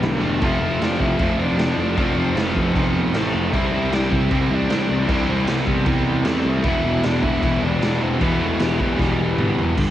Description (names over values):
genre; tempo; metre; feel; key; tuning
punk rock; 154 BPM; 4/4; straight; unclear; A4 = 441 Hz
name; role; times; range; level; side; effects
crunchy overdriven guitar; melody; 0.0-9.6 s; G3 to E5; -27 LUFS; left 1 dB; none
distorted electric guitar; riff; 0.0-9.9 s; E2 to C4; -25 LUFS; right 7 dB; overdrive, cassette tape
distorted electric guitar; riff; 0.0-9.8 s; C3 to G4; -25 LUFS; left 1 dB; overdrive, cassette tape
overdriven semi-hollow guitar; riff; 0.0-9.9 s; E2 to C4; -25 LUFS; left 6 dB; cassette tape
fuzz picked electric bass; bass; 0.0-9.9 s; E1 to E2; -24 LUFS; equal; overdrive
raw garage drum kit; drums; 0.0-9.9 s; crash cymbal, kick drum, snare drum, toms; -24 LUFS; equal; none
room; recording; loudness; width
little or no reverb; home recording on cassette; -17 LUFS; side -12 dB against mid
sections
0.0-9.8 A section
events
drum fill 9.0-9.8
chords
0.4 F; 3.5 C; 6.6 Em